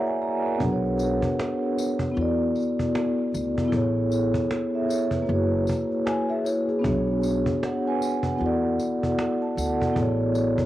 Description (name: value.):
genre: lo-fi hip hop.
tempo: 77 BPM.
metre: 4/4.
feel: swing 62% on 16ths.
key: B dorian.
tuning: A4 = 440 Hz.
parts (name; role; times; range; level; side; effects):
vibraphone with soft mallets; accompaniment; 0.0-10.7 s; A#3 to A#5; -23 LUFS; equal; cassette tape.
upright bass; bass; 0.6-10.6 s; F#1 to E2; -29 LUFS; equal; transformer saturation.
cajon; drums; 0.6-10.7 s; none; -30 LUFS; equal; none.
tambourine; percussion; 1.0-10.6 s; none; -42 LUFS; left 5 dB; none.
vibraphone with soft mallets; second line; 6.1-7.1 s; E4 to G#5; -30 LUFS; left 2 dB; cassette tape, analog delay.
room: studio reverb.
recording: home recording on cassette.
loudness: -22 LUFS.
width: side -14 dB against mid.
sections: 0.6-10.7 A section.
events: vibraphone fill 0.0-0.6.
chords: 0.0 F#9; 0.6 Bm69; 2.2 E9sus4; 3.7 Amaj9; 5.3 F#9; 6.8 Bm69; 8.4 E9sus4; 10.0 Amaj9.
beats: | 0.60 1.38 2.16 2.94 | 3.72 4.50 5.28 6.06 | 6.84 7.62 8.40 9.18 | 9.96.